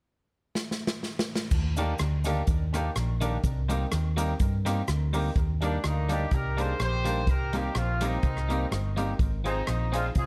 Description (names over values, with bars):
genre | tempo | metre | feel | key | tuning
ska | 125 BPM | 4/4 | swing 54% on 8ths | Eb major | A4 = 440 Hz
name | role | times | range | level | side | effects
swinging big-band drum kit | drums | 0.6-10.3 s | crash cymbal, hi-hat, kick drum, rim click, snare drum | -33 LUFS | equal | none
hollow-body short-scale fingered electric bass | bass | 1.5-10.3 s | G1 to G2 | -31 LUFS | equal | none
cabasa | percussion | 1.5-5.2 s | none | -48 LUFS | equal | none
clean electric guitar | accompaniment | 1.8-10.1 s | Eb3 to Ab4 | -35 LUFS | equal | none
clear upright piano | stabs | 1.8-10.1 s | C4 to C5 | -38 LUFS | equal | tape echo
warm horn section | melody | 5.6-10.3 s | Bb3 to C5 | -35 LUFS | equal | tape echo
room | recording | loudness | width
light reverb | none | -28 LUFS | mono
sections
0.0-1.5 A section; 1.5-5.4 B section; 5.4-10.3 C section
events
drum fill 0.6-1.5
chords
0.0 N.C.; 1.5 Ebmaj7; 3.4 Cm7; 5.4 Ebmaj7; 7.3 Cm7; 9.2 Ab6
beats
0.07 0.56 1.03 | 1.51 2.00 2.48 2.95 | 3.43 3.91 4.39 4.87 | 5.35 5.83 6.31 6.79 | 7.28 7.75 8.23 8.71 | 9.20 9.68 10.16